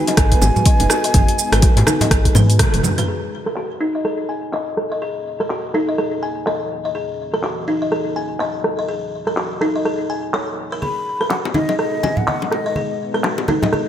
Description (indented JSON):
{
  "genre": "afro house",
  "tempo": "124 BPM",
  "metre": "4/4",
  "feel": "swing 59% on 16ths",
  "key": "unclear",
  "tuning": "A4 = 443 Hz",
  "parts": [
    { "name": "breathy hollow bansuri", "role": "melody", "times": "0.0-2.6, 10.8-13.0 s", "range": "D#5 to B5", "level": "-24 LUFS", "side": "equal", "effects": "ping-pong delay" },
    { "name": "dark analog pad", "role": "sustained chords", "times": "0.0-13.9 s", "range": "E3 to D#5", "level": "-29 LUFS", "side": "equal", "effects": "chorus, sidechain pumping" },
    { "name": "buzzing kalimba", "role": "arpeggios", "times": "0.0-13.8 s", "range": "D#4 to G#5", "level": "-23 LUFS", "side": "left 2 dB", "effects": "sidechain pumping, low-pass filter, ping-pong delay" },
    { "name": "deep house drum kit", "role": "drums", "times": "0.1-13.8 s", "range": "handclaps, hi-hat, rim click, shaker, toms", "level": "-21 LUFS", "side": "right 1 dB", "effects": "overdrive, low-pass filter on hats, low-pass filter on toms, low-pass filter on perc, low-pass filter on snare, low-pass filter on room, gated reverb" },
    { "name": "bongos", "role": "percussion", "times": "0.1-2.5, 11.3-13.7 s", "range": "none", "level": "-26 LUFS", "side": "left 5 dB", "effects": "none" },
    { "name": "woody FM bass", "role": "bass", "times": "0.2-2.8 s", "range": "F#1 to G#2", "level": "-16 LUFS", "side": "equal", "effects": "sidechain pumping" },
    { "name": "electronic kick drum", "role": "drums", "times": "0.2-2.7 s", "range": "none", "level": "-15 LUFS", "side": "equal", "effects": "overdrive" },
    { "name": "congas", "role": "percussion", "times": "0.4-3.0, 10.8-13.8 s", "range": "none", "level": "-24 LUFS", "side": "right 2 dB", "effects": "none" }
  ],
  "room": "moderate plate reverb, RT60 2.6 s",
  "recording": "bright 1980s-style digital production",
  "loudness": "-16 LUFS",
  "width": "side -10 dB against mid",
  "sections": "0.0-3.1 A section; 3.1-13.9 B section",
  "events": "filter sweep on kalimba 0.0-3.1, 3.1-13.9; drum fill 2.4-3.1; band accent 2.6",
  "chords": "0.0 G#m7; 3.1 F#7; 10.8 G#m7"
}